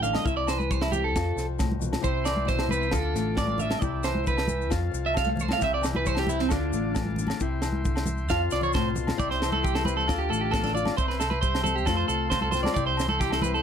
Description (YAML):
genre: highlife guitar band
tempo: 134 BPM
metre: 4/4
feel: straight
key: C major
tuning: A4 = 439 Hz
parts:
  - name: nylon-string guitar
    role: accompaniment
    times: 0.0-13.6 s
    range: F2 to F4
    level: -32 LUFS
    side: left 10 dB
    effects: none
  - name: electric guitar at the edge of break-up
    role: arpeggios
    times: 0.0-13.6 s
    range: C4 to F5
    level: -27 LUFS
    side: right 5 dB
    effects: slapback echo
  - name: fingered electric bass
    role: bass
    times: 0.0-13.6 s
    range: A1 to F2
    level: -30 LUFS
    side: equal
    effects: none
  - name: congas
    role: percussion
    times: 0.0-13.5 s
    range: none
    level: -34 LUFS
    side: equal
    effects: none
  - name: maracas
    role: percussion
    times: 0.0-13.6 s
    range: none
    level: -41 LUFS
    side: left 8 dB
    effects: none
  - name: tight funk drum kit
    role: drums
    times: 0.1-13.4 s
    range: kick drum, snare drum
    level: -30 LUFS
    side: right 1 dB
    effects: none
  - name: agogo bells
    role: percussion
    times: 0.1-13.4 s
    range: none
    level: -39 LUFS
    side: left 8 dB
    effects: none
  - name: combo organ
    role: sustained chords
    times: 2.0-13.6 s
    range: E5 to D6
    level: -38 LUFS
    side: left 2 dB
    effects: none
room: little or no reverb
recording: none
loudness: -24 LUFS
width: side -8 dB against mid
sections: 0.0-9.2 A section; 9.2-13.6 B section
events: clean electric guitar solo 0.0-9.2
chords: 0.3 C; 1.2 F; 2.0 C; 2.9 Dm; 3.8 C; 4.7 F; 5.6 C; 6.5 Dm; 7.4 C; 8.3 F; 9.2 C; 10.1 Dm; 11.0 C; 11.9 F; 12.8 C